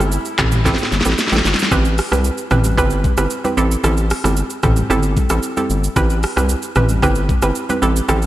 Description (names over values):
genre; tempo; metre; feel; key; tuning
afrobeats; 113 BPM; 4/4; straight; A minor; A4 = 438 Hz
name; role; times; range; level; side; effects
hollow square pluck; accompaniment; 0.0-8.3 s; C4 to B4; -20 LUFS; right 3 dB; chorus
lush unison pad; sustained chords; 0.0-1.7 s; A3 to G4; -32 LUFS; equal; none
round analog bass; bass; 0.0-8.3 s; G1 to C2; -18 LUFS; equal; none
afro-pop drum kit; drums; 0.0-8.3 s; handclaps, hi-hat, kick drum, rim click, shaker, snare drum, toms; -18 LUFS; equal; gated reverb
congas; percussion; 0.0-8.2 s; none; -27 LUFS; left 3 dB; none
room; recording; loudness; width
light reverb; bright 1980s-style digital production; -14 LUFS; side -14 dB against mid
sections
0.0-1.7 A section; 1.7-8.3 A section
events
drum fill 0.7-1.7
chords
0.0 Am7/G; 1.7 Am7; 3.6 Am7/G; 6.0 Am7